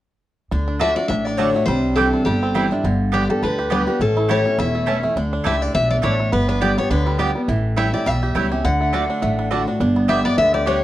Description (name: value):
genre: bluegrass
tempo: 207 BPM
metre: 4/4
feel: swing 56% on 8ths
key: D major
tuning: A4 = 437 Hz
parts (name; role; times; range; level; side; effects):
- bluegrass banjo; melody; 0.5-10.8 s; D3 to G4; -26 LUFS; right 4 dB; none
- picked steel-string acoustic guitar; accompaniment; 0.5-10.8 s; E2 to G4; -23 LUFS; left 1 dB; none
- upright bass; bass; 0.5-10.8 s; E1 to D2; -22 LUFS; equal; none
- picked steel-string acoustic guitar; melody; 0.8-10.8 s; G4 to F#5; -21 LUFS; left 2 dB; none
- mandolin; stabs; 0.8-10.8 s; A3 to A5; -24 LUFS; right 5 dB; none
- lap resonator guitar; second line; 10.1-10.8 s; C#5 to E5; -25 LUFS; left 4 dB; none
room: moderate studio reverb, RT60 0.5 s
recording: worn, warbling old tape, cassette tape, warbly pitch drift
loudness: -17 LUFS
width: side -14 dB against mid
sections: 0.5-10.8 A section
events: none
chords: 0.5 D; 1.7 Cadd9; 2.8 G; 4.0 A; 5.2 Dsus2; 6.3 G; 7.5 A7; 8.6 D; 9.8 G